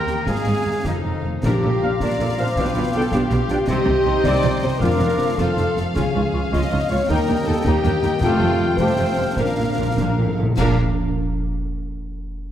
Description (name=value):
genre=cinematic, heroic adventure film score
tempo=97-108 BPM (dotted quarters)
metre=6/8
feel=straight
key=Bb major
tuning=A4 = 440 Hz
part: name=warm symphonic violin section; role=melody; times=0.0-10.8 s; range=Eb5 to G5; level=-31 LUFS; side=left 4 dB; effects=none
part: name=warm symphonic violin section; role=second line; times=0.0-10.8 s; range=Eb4 to Eb5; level=-31 LUFS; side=left 3 dB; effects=none
part: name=warm symphonic viola section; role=accompaniment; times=0.0-10.8 s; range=F3 to Bb4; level=-29 LUFS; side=equal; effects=none
part: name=dark French horn section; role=sustained chords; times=0.0-10.8 s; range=Eb3 to Eb5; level=-24 LUFS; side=left 2 dB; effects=none
part: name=concert harp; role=arpeggios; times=0.0-11.8 s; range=F2 to Bb5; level=-32 LUFS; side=left 6 dB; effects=none
part: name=dark trumpet section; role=stabs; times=0.0-10.8 s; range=Eb4 to G5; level=-30 LUFS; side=right 1 dB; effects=none
part: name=dark symphonic double bass section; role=bass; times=0.1-10.8 s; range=F1 to Eb2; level=-26 LUFS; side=right 3 dB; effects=none
part: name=rich symphonic cello section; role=bass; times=0.1-10.8 s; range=Db2 to C3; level=-26 LUFS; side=right 2 dB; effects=none
part: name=concert snare drum, concert bass drum and clash cymbals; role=drums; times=0.1-10.8 s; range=none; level=-28 LUFS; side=equal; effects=none
part: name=timpani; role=percussion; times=0.3-2.0, 4.8-5.3, 8.2-10.8 s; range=F2 to Bb2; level=-26 LUFS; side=right 1 dB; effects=none
part: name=clear oboe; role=second line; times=1.4-10.8 s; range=F5 to Bb5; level=-33 LUFS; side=equal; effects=none
part: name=hollow flute section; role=second line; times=1.4-10.8 s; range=A5 to D6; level=-33 LUFS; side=left 2 dB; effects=none
part: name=warm clarinet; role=second line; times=1.4-10.8 s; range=C4 to F4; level=-33 LUFS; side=left 1 dB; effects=none
part: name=clear trombone section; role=sustained chords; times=1.8-10.8 s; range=Eb3 to D4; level=-31 LUFS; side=right 2 dB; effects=none
room=wet scoring stage reverb, RT60 1.9 s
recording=none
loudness=-17 LUFS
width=side -10 dB against mid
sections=0.0-1.4 A section; 1.4-10.6 B section; 10.6-11.8 C section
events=slowing down 7.7-10.6; timpani fill 9.4-10.6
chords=0.3 Db/Ab; 0.9 F7; 1.4 Bb6; 2.6 G7/B; 3.7 Cm; 4.8 Bb/F; 5.4 F; 6.0 Db; 7.1 Eb; 8.2 Fadd9; 9.4 Bb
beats=| 0.27 0.85 | 1.44 2.01 | 2.57 3.13 | 3.69 4.24 | 4.81 5.38 | 5.96 6.53 | 7.10 7.66 | 8.22 8.79 | 9.38 9.98 | 10.59 11.20